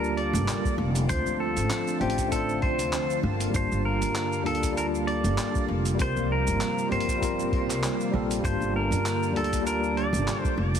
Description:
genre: sunset chillout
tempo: 98 BPM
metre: 4/4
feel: swing 55% on 16ths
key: G minor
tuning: A4 = 440 Hz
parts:
  - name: pedal steel guitar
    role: melody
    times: 0.0-10.5 s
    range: G4 to D5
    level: -30 LUFS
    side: left 1 dB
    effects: digital delay, shimmer reverb
  - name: mellow tine electric piano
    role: accompaniment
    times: 0.0-10.8 s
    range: G3 to A5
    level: -30 LUFS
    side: moving between left 3 dB and right 4 dB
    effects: medium stereo tremolo, auto-pan, shimmer reverb
  - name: lush unison pad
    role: sustained chords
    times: 0.0-10.8 s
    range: C3 to A5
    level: -32 LUFS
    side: left 1 dB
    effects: chorus, shimmer reverb
  - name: upright bass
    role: bass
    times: 0.0-10.8 s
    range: F1 to G2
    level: -29 LUFS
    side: equal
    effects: none
  - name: dusty soul sampler-style drum kit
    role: drums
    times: 0.0-10.8 s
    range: cabasa, handclaps, hi-hat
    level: -35 LUFS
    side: right 1 dB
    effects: none
  - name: electronic kick drum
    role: drums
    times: 0.6-10.6 s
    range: none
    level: -30 LUFS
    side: equal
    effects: overdrive
room: light reverb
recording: heavily compressed radio sound, multiband compression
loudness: -24 LUFS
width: side -8 dB against mid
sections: 0.0-10.8 A section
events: none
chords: 0.0 Gm9; 1.1 Dm7; 3.2 Gm9; 6.0 C7sus4; 8.4 Gm9

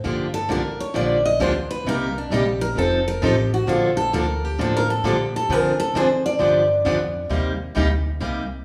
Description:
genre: acoustic string swing (jazz manouche)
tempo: 132 BPM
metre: 4/4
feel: swing 64% on 8ths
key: G minor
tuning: A4 = 441 Hz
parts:
  - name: picked steel-string acoustic guitar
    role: accompaniment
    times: 0.0-8.4 s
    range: C3 to A4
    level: -25 LUFS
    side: equal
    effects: none
  - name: upright bass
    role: bass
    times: 0.0-8.6 s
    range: F1 to D3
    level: -28 LUFS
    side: equal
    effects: none
  - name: picked steel-string acoustic guitar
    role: melody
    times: 0.3-7.3 s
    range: D4 to Eb5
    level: -24 LUFS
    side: equal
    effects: none
room: wet large studio reverb, RT60 1.1 s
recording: band playing live in one room, studio reverb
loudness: -21 LUFS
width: mono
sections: 0.0-8.6 A section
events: steel-string acoustic guitar solo 0.0-8.6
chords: 0.0 Gm7; 1.9 Cm7; 2.8 F7; 3.7 Bbmaj7; 5.5 Dm7b5; 6.4 G7; 7.3 Cm7

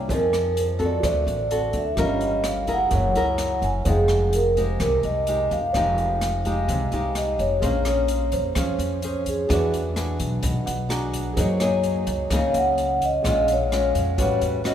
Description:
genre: bossa nova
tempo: 128 BPM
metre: 4/4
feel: straight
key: F minor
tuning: A4 = 439 Hz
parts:
  - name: dark baby grand piano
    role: accompaniment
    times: 0.0-14.7 s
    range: F#4 to C6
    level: -34 LUFS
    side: right 3 dB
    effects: none
  - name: nylon-string guitar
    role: accompaniment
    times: 0.0-14.7 s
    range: A2 to C5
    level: -27 LUFS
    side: left 1 dB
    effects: none
  - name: upright bass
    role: bass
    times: 0.0-14.7 s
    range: F1 to Gb2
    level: -26 LUFS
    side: equal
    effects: none
  - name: vibraphone with soft mallets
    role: melody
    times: 0.1-14.7 s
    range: Ab4 to Ab5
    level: -24 LUFS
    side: equal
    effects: none
  - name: open jazz drum kit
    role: drums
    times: 0.1-14.7 s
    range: hi-hat, kick drum, rim click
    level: -30 LUFS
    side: equal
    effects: none
room: wet church reverb, RT60 3.5 s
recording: recorded in a church or concert hall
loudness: -20 LUFS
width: side -9 dB against mid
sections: 0.0-7.6 A section; 7.6-14.7 B section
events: grand piano fill 10.4-11.4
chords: 0.1 Fm7; 1.0 D7; 2.0 Gm7b5; 2.9 Gb9; 3.9 Fm9; 7.6 Bbm9; 9.5 E9; 11.4 Gb69; 13.2 Bbm7; 14.2 A13

